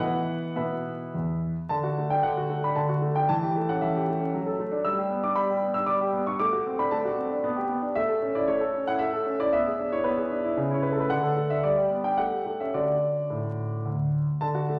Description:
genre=classical-period piano sonatina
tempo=104-117 BPM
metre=3/4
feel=rubato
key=D major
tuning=A4 = 440 Hz
part: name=clear concert grand piano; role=solo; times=0.0-14.8 s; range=D2 to E6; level=-27 LUFS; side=equal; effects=none
room=wet recital hall reverb, RT60 1.2 s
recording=vinyl crackle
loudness=-27 LUFS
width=mono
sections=0.0-1.7 A section; 1.7-14.4 B section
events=none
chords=0.0 E5; 1.7 D; 3.3 A7/E; 4.3 D/F#; 4.8 G; 6.4 D7/A; 7.4 G/B; 8.0 A; 9.5 E7/B; 10.6 A/C#; 11.1 D; 11.6 G; 12.2 A7; 12.7 D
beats=| 0.00 0.57 1.14 | 1.70 2.23 2.76 | 3.29 3.82 4.33 | 4.85 5.37 5.88 | 6.40 6.92 7.43 | 7.96 8.48 9.00 | 9.52 10.04 10.57 | 11.11 11.65 12.19 | 12.74 13.31 13.86 | 14.41

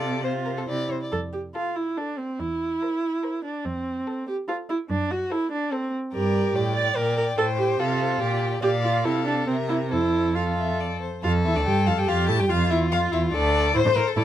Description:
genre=quick classical-period movement for string quartet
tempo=143 BPM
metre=3/4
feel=straight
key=F major, D minor from 11.2 s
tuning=A4 = 440 Hz
part: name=rich violin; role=melody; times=0.0-14.2 s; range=A4 to A5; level=-30 LUFS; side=left 6 dB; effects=none
part: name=rich violin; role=second line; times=0.0-14.2 s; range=F4 to D5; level=-29 LUFS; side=left 4 dB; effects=none
part: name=rich viola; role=accompaniment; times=0.0-14.2 s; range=C4 to D5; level=-26 LUFS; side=right 2 dB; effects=none
part: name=rich cello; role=bass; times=0.0-14.2 s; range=D2 to C3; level=-26 LUFS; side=right 2 dB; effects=none
room=light reverb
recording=close, detailed microphones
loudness=-22 LUFS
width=side -11 dB against mid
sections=0.0-1.1 A section; 1.1-11.2 B section; 11.2-14.2 A section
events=none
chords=0.0 F/C; 0.7 C; 1.1 F; 2.4 C7/E; 3.6 F; 4.9 F#m7b5; 6.1 Gm; 7.4 F/A; 8.6 Bb; 9.1 F/C; 9.5 C7; 9.9 F; 11.2 Dm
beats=0.24 0.68 | 1.12 1.55 1.97 | 2.40 2.81 3.23 | 3.65 4.07 4.49 | 4.90 5.31 5.72 | 6.14 6.55 6.97 | 7.38 7.80 8.21 | 8.63 9.05 9.48 | 9.92 10.36 10.79 | 11.23 11.66 12.08 | 12.50 12.92 13.34 | 13.75 14.17

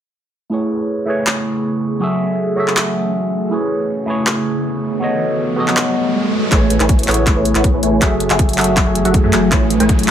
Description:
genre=future bass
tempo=160 BPM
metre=4/4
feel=half-time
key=A lydian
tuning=A4 = 440 Hz
part: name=overdriven tine electric piano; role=accompaniment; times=0.5-10.1 s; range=F#3 to E5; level=-18 LUFS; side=right 1 dB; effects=phaser, sidechain pumping, dub echo
part: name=ethereal airy pad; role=sustained chords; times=1.2-10.1 s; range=C#3 to G#4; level=-24 LUFS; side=left 1 dB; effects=ensemble chorus, built-in reverb, sidechain pumping
part: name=pop drum kit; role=drums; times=1.3-10.1 s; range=handclaps, hi-hat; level=-18 LUFS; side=equal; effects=overdrive, high-pass filter on snare, high-pass filter on hats, high-pass filter on room
part: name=riser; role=sound effects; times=4.8-10.1 s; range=none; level=-25 LUFS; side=right 1 dB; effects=none
part: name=supersaw stab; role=riff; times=6.5-10.1 s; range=F#3 to G#5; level=-18 LUFS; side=equal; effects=phaser, sidechain pumping, low-pass filter
part: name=saturated sub bass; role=bass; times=6.5-10.1 s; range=F#1 to F#2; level=-21 LUFS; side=equal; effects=sidechain pumping
part: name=electronic kick drum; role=drums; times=6.5-10.0 s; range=none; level=-15 LUFS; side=equal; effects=overdrive
room=light reverb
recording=none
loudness=-14 LUFS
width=side -9 dB against mid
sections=0.5-6.5 A section; 6.5-10.1 B section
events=filter sweep on ambient pad 0.5-6.5, 6.5-10.1; riser 4.8-6.5; build-up 6.5-10.1; drum fill 6.5-10.1; filter sweep on supersaw synth 6.5-10.1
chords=0.5 Amaj9; 2.0 F#m7; 3.5 Amaj9; 5.0 B7; 6.5 Amaj9; 8.0 F#m7; 9.5 Amaj9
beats=| 0.52 0.89 1.27 1.64 | 2.02 2.39 2.77 3.14 | 3.52 3.89 4.27 4.64 | 5.02 5.39 5.77 6.14 | 6.52 6.89 7.27 7.64 | 8.02 8.39 8.77 9.14 | 9.52 9.89

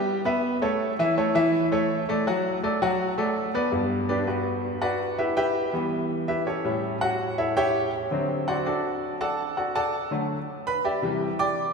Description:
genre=latin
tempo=164 BPM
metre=4/4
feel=straight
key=G major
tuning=A4 = 439 Hz
part: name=bright grand piano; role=solo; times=0.0-11.7 s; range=G2 to D6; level=-23 LUFS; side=equal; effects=none
room=wet church reverb, RT60 3.6 s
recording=recorded in a church or concert hall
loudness=-23 LUFS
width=side -4 dB against mid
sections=0.0-3.7 A section; 3.7-11.7 B section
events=grand piano solo 3.7-11.7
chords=0.0 Em; 0.8 A/E; 2.3 D; 3.7 Gmaj7; 5.2 Em; 6.6 A7; 8.1 D7; 9.6 D; 11.0 Cadd9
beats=0.08 0.44 | 0.81 1.17 1.54 1.90 | 2.27 2.63 3.00 3.36 | 3.73 4.09 4.46 4.82 | 5.19 5.55 5.92 6.28 | 6.65 7.01 7.38 7.74 | 8.11 8.47 8.84 9.20 | 9.57 9.93 10.30 10.66 | 11.03 11.39

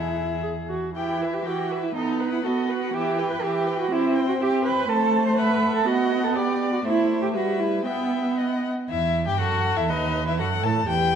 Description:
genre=quick classical-period movement for string quartet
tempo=121 BPM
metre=2/4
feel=rubato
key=E minor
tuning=A4 = 445 Hz
part: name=warm violin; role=melody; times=0.0-11.2 s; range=D5 to A5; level=-29 LUFS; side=left 8 dB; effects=none
part: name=warm violin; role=second line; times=0.0-11.2 s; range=D#4 to E5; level=-31 LUFS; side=left 2 dB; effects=none
part: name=warm viola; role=accompaniment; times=0.0-11.2 s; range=E3 to B4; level=-26 LUFS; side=right 1 dB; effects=none
part: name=rich cello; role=bass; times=0.0-11.2 s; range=D#2 to C5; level=-25 LUFS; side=right 5 dB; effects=none
room=wet scoring stage reverb, RT60 2.2 s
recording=none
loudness=-21 LUFS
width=side -8 dB against mid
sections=1.0-8.9 A section; 8.9-11.2 A section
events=none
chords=0.0 E; 1.0 Em; 2.0 B7; 2.9 Em; 3.9 C; 4.9 Am; 5.4 B7sus4/A; 5.9 B; 6.4 G/B; 6.8 Am; 7.3 Em/G; 7.9 Em/B; 8.9 Em; 9.9 B7/D#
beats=0.44 | 0.95 1.46 | 1.96 2.45 | 2.94 3.43 | 3.92 4.41 | 4.90 5.39 | 5.88 6.36 | 6.85 7.35 | 7.86 8.38 | 8.90 9.40 | 9.89 10.39 | 10.89

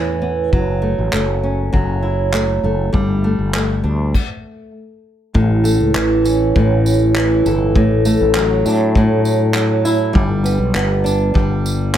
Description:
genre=acoustic pop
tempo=100 BPM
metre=4/4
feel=straight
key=A mixolydian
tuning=A4 = 439 Hz
part: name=flamenco guitar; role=accompaniment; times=0.0-12.0 s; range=A2 to A4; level=-16 LUFS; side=right 1 dB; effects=none
part: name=fretless electric bass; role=bass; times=0.0-12.0 s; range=F#1 to A2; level=-19 LUFS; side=left 1 dB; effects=none
part: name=soft brush drum kit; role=drums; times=0.5-12.0 s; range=crash cymbal, handclaps, kick drum, tambourine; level=-20 LUFS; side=equal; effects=none
room=little or no reverb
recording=none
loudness=-14 LUFS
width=side -10 dB against mid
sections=0.0-5.3 A section; 5.3-12.0 B section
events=stop 4.1-5.3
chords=0.0 Aadd9; 0.5 F#m7; 2.9 Gsus2; 5.3 A; 7.7 Dadd9/A; 10.1 Gadd9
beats=| 0.53 1.13 1.74 2.34 | 2.94 3.54 4.14 4.75 | 5.35 5.95 6.55 7.15 | 7.75 8.35 8.95 9.55 | 10.15 10.75 11.35 11.95

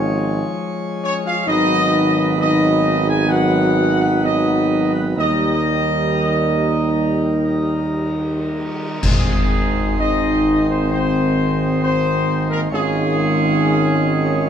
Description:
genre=classical, ceremonial fanfare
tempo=64 BPM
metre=4/4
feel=uneven beats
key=Ab major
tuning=A4 = 439 Hz
part: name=mellow trumpet section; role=melody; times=0.0-14.5 s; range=Ab4 to Ab5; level=-21 LUFS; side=right 1 dB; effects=none
part: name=dark French horn section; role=sustained chords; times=0.0-14.5 s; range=Ab3 to Ab4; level=-23 LUFS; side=left 4 dB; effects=none
part: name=pipe organ, principal chorus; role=sustained chords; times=0.0-14.5 s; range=D#3 to Db5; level=-24 LUFS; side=equal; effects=none
part: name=clear tuba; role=bass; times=0.0-14.5 s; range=Ab1 to Eb2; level=-20 LUFS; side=right 3 dB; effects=none
part: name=dark trombone section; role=sustained chords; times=1.5-14.5 s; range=Eb3 to Db4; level=-24 LUFS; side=right 2 dB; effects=none
part: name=cymbal swell, clash cymbals and concert bass drum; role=percussion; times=5.2-10.9 s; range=none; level=-23 LUFS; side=left 1 dB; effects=none
room=moderate recital hall reverb, RT60 1.6 s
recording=dark, warm production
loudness=-15 LUFS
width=side -8 dB against mid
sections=0.0-9.0 A section; 9.0-14.5 B section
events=band accent 9.0-10.0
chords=0.0 Db/Ab; 1.5 B/Ab; 5.2 Eb; 9.0 Ab; 12.7 Dbadd9/Ab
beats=0.58 | 1.48 2.38 3.30 4.22 | 5.17 6.13 7.09 8.05 | 9.03 9.99 10.90 11.81 | 12.72 13.62

